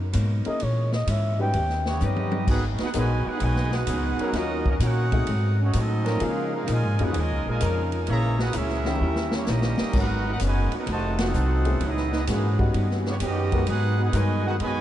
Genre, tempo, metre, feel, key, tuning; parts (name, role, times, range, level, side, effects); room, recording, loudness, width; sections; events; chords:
jazz, big band swing; 129 BPM; 4/4; swing 68% on 8ths; G# minor; A4 = 440 Hz
archtop guitar, miked and amplified; accompaniment; 0.0-14.8 s; G#2 to G4; -34 LUFS; left 4 dB
upright bass; bass; 0.0-14.8 s; F1 to C#3; -24 LUFS; equal
swinging big-band drum kit; drums; 0.1-14.8 s; crash cymbal, hi-hat, kick drum, ride cymbal, snare drum, toms; -31 LUFS; equal
trumpet with bucket mute; melody; 0.5-2.0 s; C#5 to G5; -32 LUFS; left 1 dB
warm baby grand piano; accompaniment; 0.5-14.4 s; E3 to B4; -35 LUFS; left 3 dB
mellow trumpet section; melody; 1.9-14.8 s; A3 to A#5; -31 LUFS; right 1 dB; diffuse ambient delay
clear trombone section; second line; 1.9-14.8 s; A#2 to G4; -31 LUFS; right 4 dB
mellow trombone section; sustained chords; 4.2-14.6 s; D#3 to A#4; -34 LUFS; left 1 dB
moderate huge ambient reverb, RT60 6.3 s; dreamy mix soaked in reverb, nothing above 10.6 kHz; -22 LUFS; side -12 dB against mid
0.0-2.5 A section; 2.5-14.8 B section
muted trumpet solo 0.0-2.5; drum fill 2.0-2.5, 9.0-9.9; band accent 11.1
0.0 Bmaj7; 0.6 A#m7b5; 1.5 D#7b13; 2.5 G#m7; 4.3 D#m7; 5.3 G#7b9; 6.2 C#69; 8.1 A#m7b5; 9.0 D#7b9; 9.9 G#m11; 10.9 F7b9; 11.8 A#m7b5; 12.7 D#7alt; 13.7 G#m7